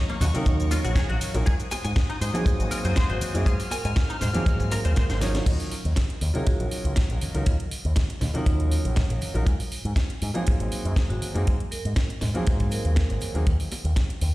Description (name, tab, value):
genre	nu-disco, nu disco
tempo	120 BPM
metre	4/4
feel	swing 53% on 16ths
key	unclear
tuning	A4 = 435 Hz
part	dark studio string section	sustained chords	0.0-5.4 s	Gb3 to F6	-35 LUFS	left 2 dB	sidechain pumping
part	direct-recorded clean electric guitar	riff	0.1-5.2 s	Bb3 to Ab5	-34 LUFS	left 2 dB	ensemble chorus, dub echo
part	house drum kit	drums	0.1-14.3 s	crash cymbal, hi-hat, shaker, snare drum	-34 LUFS	right 1 dB	studio ambience
part	maracas, congas and bongos	percussion	0.1-14.3 s	none	-34 LUFS	right 1 dB	none
part	picked electric bass with an envelope filter	bass	0.2-14.3 s	Ab1 to F3	-25 LUFS	equal	none
part	vibraphone with medium hard mallets	melody	0.3-13.4 s	Eb4 to Bb4	-38 LUFS	right 5 dB	tape echo
part	warm grand piano	accompaniment	0.3-13.5 s	Gb3 to F5	-32 LUFS	equal	sidechain pumping, dub echo
part	kick drum	drums	0.5-14.1 s	none	-22 LUFS	equal	studio ambience
room	studio ambience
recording	played on a big sound system in a bare room, stone room reverb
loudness	-22 LUFS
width	side -18 dB against mid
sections	0.0-5.5 A section; 5.5-14.3 B section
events	drop 0.0-5.5; drum fill 5.0-5.5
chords	0.0 Ebm7; 1.5 Ab7; 5.5 Ebm7; 9.5 Ab7; 13.5 N.C.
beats	0.47 0.97 | 1.47 1.97 2.47 2.97 | 3.47 3.97 4.47 4.97 | 5.47 5.97 6.47 6.97 | 7.47 7.97 8.47 8.97 | 9.47 9.97 10.47 10.97 | 11.47 11.97 12.47 12.97 | 13.47 13.97